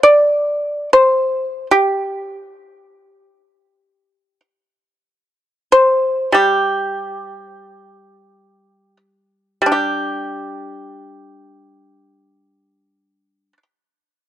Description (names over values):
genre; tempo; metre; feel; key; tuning
chinese traditional, Chinese solo plucked strings; free time; none; none; unclear; A4 = 440 Hz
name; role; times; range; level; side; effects
pipa; solo; 0.0-13.6 s; G3 to D5; -14 LUFS; equal; none
room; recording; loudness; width
little or no reverb; dry, close 1970s-style studio recording; -14 LUFS; side -12 dB against mid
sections
0.0-9.7 A section; 9.7-14.3 B section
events
slowing down 0.0-9.7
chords
none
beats
free time